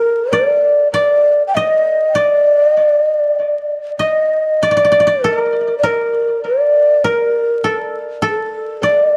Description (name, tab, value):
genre	japanese traditional, Japanese chamber music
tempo	50 BPM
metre	2/4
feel	rubato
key	unclear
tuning	A4 = 440 Hz
part	breathy mellow shakuhachi	melody	0.0-9.2 s	A4 to G5	-15 LUFS	equal	tape echo
part	koto	second line	0.0-9.2 s	A4 to Eb5	-23 LUFS	equal	tape echo
room	wet studio reverb, RT60 0.6 s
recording	vinyl crackle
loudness	-14 LUFS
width	mono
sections	0.0-9.2 A section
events	none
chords	none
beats	0.93 | 2.14 3.37 | 4.61 5.84 | 7.04 8.24